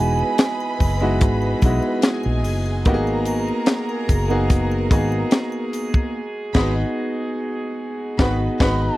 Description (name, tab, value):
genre	lush 1970s-style soul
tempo	73 BPM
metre	4/4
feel	straight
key	G# minor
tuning	A4 = 443 Hz
part	mellow hollow concert flute	melody	0.0-1.6, 8.6-9.0 s	G#5 to B5	-26 LUFS	right 5 dB	none
part	warm studio violin section	second line	0.0-8.9 s	G#4 to B5	-31 LUFS	equal	none
part	clear baby grand piano	accompaniment	0.0-9.0 s	G#3 to B4	-23 LUFS	equal	none
part	muted French horn section	sustained chords	0.0-9.0 s	E3 to D#5	-32 LUFS	right 1 dB	none
part	vintage muted fingered electric bass	bass	0.0-8.9 s	E1 to B1	-22 LUFS	equal	none
part	triangle	percussion	0.2-6.1 s	none	-42 LUFS	right 6 dB	none
part	tight funk drum kit	drums	0.4-8.9 s	crash cymbal, hi-hat, kick drum, snare drum	-17 LUFS	equal	none
part	warm horn section	stabs	6.5-8.8 s	B2 to F#4	-29 LUFS	right 1 dB	none
room	little or no reverb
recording	dry, close 1970s-style studio recording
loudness	-18 LUFS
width	side -17 dB against mid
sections	0.0-9.0 A section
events	band accent 6.1-9.0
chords	0.0 Emaj7; 2.9 G#m7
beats	0.39 1.21 2.03 | 2.85 3.68 4.50 5.32 | 6.14 6.96 7.78 8.60